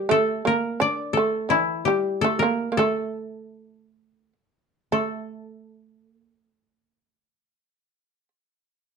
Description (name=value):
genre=japanese traditional, Japanese chamber music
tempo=51-88 BPM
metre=2/4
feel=rubato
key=A in sen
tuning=A4 = 440 Hz
part: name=koto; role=melody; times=0.0-8.3 s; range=E4 to D5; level=-23 LUFS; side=left 2 dB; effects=none
part: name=shamisen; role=second line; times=0.0-8.3 s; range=D3 to D4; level=-25 LUFS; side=right 3 dB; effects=none
room=moderate studio reverb, RT60 0.6 s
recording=dark, warm production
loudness=-21 LUFS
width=side -5 dB against mid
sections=0.0-4.9 A section; 4.9-9.0 B section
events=slowing down 1.5-4.9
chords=none